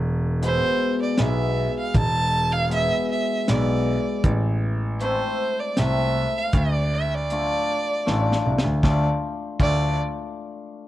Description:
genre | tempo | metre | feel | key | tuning
klezmer | 78 BPM | 3/4 | straight | D dorian sharp4 | A4 = 440 Hz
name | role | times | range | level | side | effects
warm grand piano | bass | 0.0-9.9 s | E1 to D2 | -23 LUFS | equal | none
warm violin | melody | 0.4-10.0 s | C5 to A5 | -25 LUFS | right 2 dB | none
cimbalom | accompaniment | 0.4-10.0 s | B2 to F4 | -27 LUFS | left 4 dB | none
tight funk drum kit | drums | 0.4-9.8 s | crash cymbal, hi-hat, kick drum, snare drum | -22 LUFS | equal | none
room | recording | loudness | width
small room ambience | dry, close 1970s-style studio recording | -20 LUFS | side -14 dB against mid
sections
0.0-8.8 A section; 8.8-10.9 B section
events
drum fill 8.1-8.8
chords
0.0 E; 4.2 Am; 6.5 Dm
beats
0.42 1.19 | 1.95 2.71 3.48 | 4.25 5.01 5.77 | 6.54 7.30 8.07 | 8.83 9.59

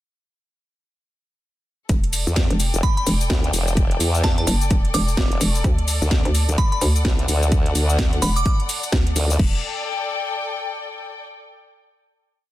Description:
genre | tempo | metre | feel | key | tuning
bass house | 128 BPM | 4/4 | swing 61% on 16ths | E minor | A4 = 445 Hz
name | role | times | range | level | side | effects
hollow knocking FM bass | bass | 1.9-9.6 s | E1 to D2 | -20 LUFS | equal | overdrive, sidechain pumping
electronic kick drum | drums | 1.9-9.5 s | none | -20 LUFS | equal | studio ambience
house drum kit | drums | 1.9-9.5 s | crash cymbal, hi-hat, shaker, snare drum | -25 LUFS | equal | studio ambience
rich studio string section | texture | 1.9-11.2 s | A4 to G5 | -29 LUFS | left 4 dB | sidechain pumping
formant-sweep wobble bass | bass | 2.3-9.4 s | E1 to E2 | -20 LUFS | equal | chorus, tube saturation, sidechain pumping
glassy synth bell | melody | 2.8-8.5 s | A5 to D6 | -28 LUFS | right 1 dB | chorus, digital delay
room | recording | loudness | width
digital ambience | dense, heavily limited modern master | -18 LUFS | side -15 dB against mid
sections
1.9-9.4 drop; 9.4-11.3 final chord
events
drop 1.9-9.4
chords
1.9 Em; 5.6 D; 9.4 N.C.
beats
| 1.89 2.36 2.83 3.30 | 3.77 4.24 4.71 5.17 | 5.64 6.11 6.58 7.05 | 7.52 7.99 8.46 8.93 | 9.39 9.86 10.33 10.80

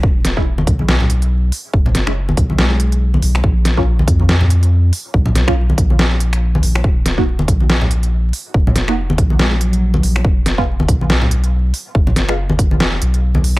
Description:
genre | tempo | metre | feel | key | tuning
deep dubstep | 141 BPM | 4/4 | swing 58% on 16ths, half-time | Eb minor | A4 = 440 Hz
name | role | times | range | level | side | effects
soft dub sub bass | bass | 0.0-13.6 s | Eb1 to F2 | -15 LUFS | equal | none
electronic kick drum | drums | 0.0-12.7 s | none | -16 LUFS | equal | none
dubstep drum kit | drums | 0.2-13.6 s | finger snaps, hi-hat, snare drum | -18 LUFS | equal | none
filtered dub chord stab | stabs | 0.4-12.3 s | G#3 to Gb4 | -23 LUFS | right 2 dB | phaser, wide subtle chorus, vintage 12-bit sampler grit, dub echo
congas and bongos | percussion | 0.6-13.6 s | none | -20 LUFS | left 1 dB | none
dark cello | melody | 2.6-2.8, 9.4-10.0 s | Gb3 to G#3 | -25 LUFS | equal | dub echo
room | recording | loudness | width
little or no reverb | vinyl crackle | -12 LUFS | side -20 dB against mid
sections
0.0-13.6 A section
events
none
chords
0.0 E5; 3.4 Bb5; 6.8 Eb5; 10.2 F(b5, no3)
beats
| 0.03 0.46 0.89 1.31 | 1.74 2.16 2.59 3.01 | 3.44 3.86 4.29 4.71 | 5.14 5.57 5.99 6.42 | 6.84 7.27 7.69 8.12 | 8.54 8.97 9.40 9.82 | 10.25 10.67 11.10 11.52 | 11.95 12.38 12.80 13.23

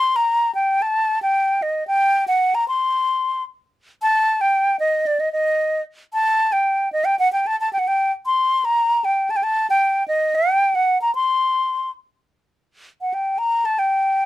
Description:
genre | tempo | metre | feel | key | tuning
klezmer | 113 BPM | 2/4 | straight | unclear | A4 = 438 Hz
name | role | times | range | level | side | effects
mellow hollow silver concert flute | solo | 0.0-14.3 s | D5 to C6 | -17 LUFS | equal | none
room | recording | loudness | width
light reverb | close, detailed microphones | -17 LUFS | side -15 dB against mid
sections
0.0-4.0 A section; 4.0-12.5 A section; 12.5-14.3 B section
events
flute solo 12.5-14.3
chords
none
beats
0.28 | 0.81 1.35 | 1.88 2.41 | 2.94 3.47 | 4.00 4.53 | 5.06 5.59 | 6.12 6.65 | 7.18 7.71 | 8.24 8.77 | 9.29 9.82 | 10.35 10.88 | 11.41 11.94 | 12.47 12.99 | 13.52 14.05

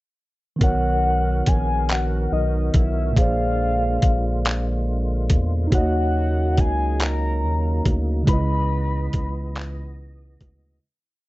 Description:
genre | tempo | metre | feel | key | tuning
slow six-eight R&B | 47 BPM (dotted quarters) | 6/8 | straight | B major | A4 = 440 Hz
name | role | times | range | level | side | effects
soft octave-layered synth lead | melody | 0.6-9.9 s | D#5 to B5 | -26 LUFS | left 2 dB | chorus, phaser
mellow tine electric piano | accompaniment | 0.6-10.8 s | A#2 to F#5 | -26 LUFS | right 2 dB | none
tonewheel organ | sustained chords | 0.6-10.8 s | C#3 to D#5 | -33 LUFS | equal | overdrive, chorus vibrato, slow rotary speaker
rubbery square bass | bass | 0.6-10.8 s | A#1 to E2 | -23 LUFS | equal | none
dusty soul sampler-style drum kit | drums | 0.6-10.6 s | handclaps, hi-hat, kick drum | -19 LUFS | equal | none
room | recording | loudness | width
light reverb | worn, warbling old tape, cassette tape, warbly pitch drift, nothing above 7.9 kHz | -19 LUFS | side -18 dB against mid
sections
0.6-10.8 chorus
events
fade-out 8.3-10.8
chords
0.6 Bmaj7; 3.2 A#7; 5.7 D#m7; 8.3 C#m9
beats
| 0.61 1.89 | 3.16 4.44 | 5.72 6.99 | 8.27 9.55

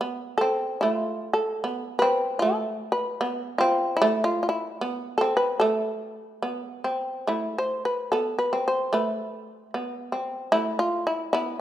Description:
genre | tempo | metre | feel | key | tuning
japanese traditional, Japanese chamber music | 74 BPM | 2/4 | rubato | A hirajoshi | A4 = 439 Hz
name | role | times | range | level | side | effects
shamisen | melody | 0.0-11.6 s | E4 to C5 | -25 LUFS | equal | none
shamisen | second line | 0.0-11.6 s | A3 to C4 | -27 LUFS | right 1 dB | none
room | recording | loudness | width
moderate recital hall reverb, RT60 1.8 s | minimal, uncompressed stereo recording | -23 LUFS | side -12 dB against mid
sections
0.0-7.3 A section; 7.3-11.6 B section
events
none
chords
none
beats
0.00 | 0.81 1.62 | 2.42 3.21 | 4.00 4.80 | 5.61 6.43 | 7.28 8.11 | 8.93 9.73 | 10.53 11.34

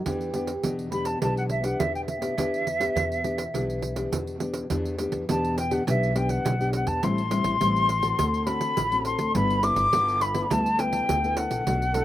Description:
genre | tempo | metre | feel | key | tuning
samba and choro | 103 BPM | 4/4 | straight | E minor | A4 = 445 Hz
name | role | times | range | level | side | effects
breathy trombone | second line | 0.0-0.8, 11.9-12.0 s | G4 to A4 | -31 LUFS | right 4 dB | slapback echo
nylon-string guitar | accompaniment | 0.0-12.0 s | A2 to A4 | -29 LUFS | left 2 dB | none
upright bass | bass | 0.1-12.0 s | G1 to E2 | -30 LUFS | equal | none
pandeiro | percussion | 0.1-12.0 s | none | -32 LUFS | right 5 dB | none
mellow concert flute | melody | 0.9-12.0 s | E5 to D6 | -26 LUFS | left 1 dB | slapback echo
room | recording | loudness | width
light reverb | recorded outdoors, with no room sound | -23 LUFS | side -13 dB against mid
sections
0.0-4.7 A section; 4.7-12.0 B section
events
none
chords
0.1 Em7; 7.0 Am7; 8.2 D7; 9.3 G69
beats
| 0.06 0.64 1.22 1.80 | 2.38 2.96 3.54 4.12 | 4.71 5.29 5.87 6.45 | 7.03 7.61 8.19 8.77 | 9.35 9.93 10.51 11.09 | 11.67

